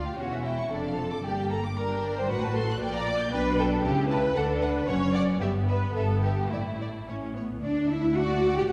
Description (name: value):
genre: quick classical-period movement for string orchestra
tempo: 114 BPM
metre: 2/4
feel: rubato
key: D major from 3.3 s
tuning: A4 = 440 Hz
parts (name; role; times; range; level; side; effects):
- warm studio violin section; melody; 0.0-8.7 s; C#5 to G6; -40 LUFS; equal; none
- warm symphonic violin section; second line; 0.0-8.7 s; E4 to G5; -32 LUFS; equal; none
- warm symphonic viola section; accompaniment; 0.0-8.7 s; A3 to F#4; -37 LUFS; equal; none
- rich symphonic cello section; bass; 0.0-8.7 s; D2 to G4; -32 LUFS; equal; none
- warm symphonic double bass section; bass; 0.0-8.7 s; E1 to D2; -34 LUFS; equal; none
room: wet scoring stage reverb, RT60 1.7 s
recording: heard from further back in the room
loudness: -27 LUFS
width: mono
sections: 0.0-7.6 A section; 7.6-8.7 B section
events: none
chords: 0.2 C#dim/E; 0.7 Dm/F; 1.2 Gm; 2.3 F#dim/A; 2.8 Gm/Bb; 3.3 G/B; 3.8 A7/C#; 4.4 D; 4.9 N.C.; 5.4 Em/G; 6.5 Asus4; 7.1 A; 7.6 D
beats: | 0.18 0.71 | 1.24 1.76 | 2.29 2.80 | 3.32 3.84 | 4.36 4.88 | 5.41 5.95 | 6.51 7.07 | 7.62 8.16 | 8.69